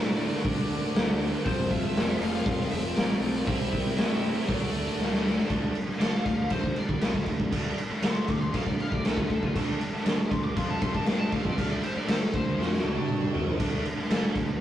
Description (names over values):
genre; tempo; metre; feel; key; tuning
hard rock; 118 BPM; 4/4; straight; unclear; A4 = 440 Hz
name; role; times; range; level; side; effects
lead guitar through a small cranked amp; melody; 0.0-13.6 s; D4 to D6; -36 LUFS; left 2 dB; overdrive
phased analog pad; sustained chords; 0.0-14.6 s; D4 to A5; -39 LUFS; right 3 dB; none
crunchy overdriven guitar; riff; 0.0-14.6 s; F2 to A4; -36 LUFS; left 5 dB; none
tight distorted guitar; riff; 0.0-14.6 s; F2 to A4; -36 LUFS; right 4 dB; distortion
tight distorted guitar; riff; 0.0-5.5, 13.6-14.6 s; C3 to A4; -39 LUFS; equal; distortion
growling fingered electric bass; bass; 0.0-14.6 s; F1 to D3; -38 LUFS; equal; overdrive
raw garage drum kit; drums; 0.2-14.5 s; crash cymbal, hi-hat, kick drum, snare drum, toms; -26 LUFS; equal; none
room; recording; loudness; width
moderate studio reverb, RT60 0.7 s; rough rehearsal-room recording; -25 LUFS; side -12 dB against mid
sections
0.0-5.5 A section; 5.5-14.6 B section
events
drum fill 5.0-5.5, 12.6-13.6; lead electric guitar solo 5.5-14.6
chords
0.0 D; 1.5 F; 3.5 C; 4.5 D; 5.5 D5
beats
0.45 0.95 | 1.46 1.96 2.46 2.97 | 3.48 3.98 4.49 4.99 | 5.50 6.00 6.51 7.02 | 7.52 8.03 8.54 9.04 | 9.55 10.05 10.56 11.07 | 11.57 12.08 12.59 13.09 | 13.60 14.11